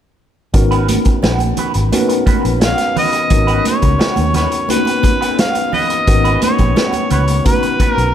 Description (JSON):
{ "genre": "lush 1970s-style soul", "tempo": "87 BPM", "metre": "4/4", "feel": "straight", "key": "G# dorian", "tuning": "A4 = 442 Hz", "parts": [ { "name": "tine electric piano", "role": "accompaniment", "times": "0.5-8.1 s", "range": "A#3 to B4", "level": "-19 LUFS", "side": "left 4 dB", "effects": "medium stereo tremolo" }, { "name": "electric guitar through a small old amp", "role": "riff", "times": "0.5-8.0 s", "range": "C#4 to C#5", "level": "-23 LUFS", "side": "right 4 dB", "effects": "wah, spring reverb" }, { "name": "vintage muted fingered electric bass", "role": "bass", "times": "0.5-8.1 s", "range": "G#1 to D#2", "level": "-18 LUFS", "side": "equal", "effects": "none" }, { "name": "vintage drum kit", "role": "drums", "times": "0.5-8.1 s", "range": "hi-hat, kick drum, snare drum", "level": "-17 LUFS", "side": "equal", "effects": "none" }, { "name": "congas", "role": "percussion", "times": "0.5-8.0 s", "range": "none", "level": "-23 LUFS", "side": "right 8 dB", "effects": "none" }, { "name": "mellow harmonica", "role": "melody", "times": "2.6-8.1 s", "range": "B4 to E#5", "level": "-17 LUFS", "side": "equal", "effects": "none" } ], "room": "light reverb", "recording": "none", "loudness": "-12 LUFS", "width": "side -10 dB against mid", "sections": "0.5-3.3 A section; 3.3-8.1 B section", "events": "none", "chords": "0.5 G#m11; 3.3 G#m11 (rootless)" }